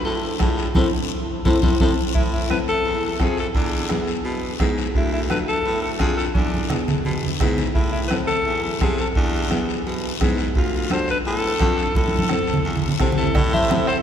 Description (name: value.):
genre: latin, cumbia.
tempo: 171 BPM.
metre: 4/4.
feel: straight.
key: A harmonic minor.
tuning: A4 = 444 Hz.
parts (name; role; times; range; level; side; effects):
clean electric guitar; second line; 0.0-1.9, 13.2-13.9 s; E4 to C5; -27 LUFS; left 3 dB; none.
bright baritone saxophone; bass; 0.1-13.9 s; D2 to C3; -27 LUFS; equal; none.
congas; percussion; 0.1-13.9 s; none; -26 LUFS; right 1 dB; none.
guiro; percussion; 0.1-14.0 s; none; -33 LUFS; left 7 dB; none.
dark upright piano; accompaniment; 0.4-14.0 s; B3 to A4; -27 LUFS; left 2 dB; none.
bombo; percussion; 0.4-14.0 s; none; -24 LUFS; right 1 dB; none.
bright alto saxophone; melody; 2.1-14.0 s; D4 to E5; -25 LUFS; left 2 dB; none.
cowbell; percussion; 13.3-13.5 s; none; -36 LUFS; right 2 dB; none.
room: wet cathedral reverb, RT60 5.4 s.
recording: recorded in a church or concert hall.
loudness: -18 LUFS.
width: side -9 dB against mid.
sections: 0.0-2.2 A section; 2.2-13.4 B section.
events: clean electric guitar solo 0.0-2.2; band accent 0.8-2.2; drum fill 6.4-7.8, 12.0-13.4.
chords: 0.0 Dm; 0.8 Am; 3.6 E7; 5.0 Dm; 6.4 E7; 7.8 Am; 9.2 E7; 10.6 Dm; 12.0 Am.